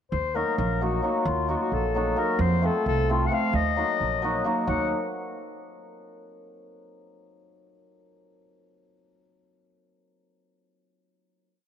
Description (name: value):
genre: balkan folk, Balkan wedding band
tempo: 263 BPM (eighths)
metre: 5/8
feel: straight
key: Eb dorian sharp4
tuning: A4 = 435 Hz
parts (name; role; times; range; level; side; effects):
- warm clarinet; melody; 0.1-4.9 s; F4 to Gb5; -28 LUFS; left 6 dB; none
- upright bass; bass; 0.1-4.9 s; Bb1 to F2; -27 LUFS; right 2 dB; none
- cimbalom; accompaniment; 0.3-4.9 s; F3 to Gb4; -28 LUFS; equal; none
room: moderate echo chamber reverb, RT60 2.4 s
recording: none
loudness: -23 LUFS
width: side -8 dB against mid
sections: 0.1-4.7 A section; 4.7-5.8 final chord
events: none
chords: 0.1 Ebm; 2.4 F; 3.5 Ebm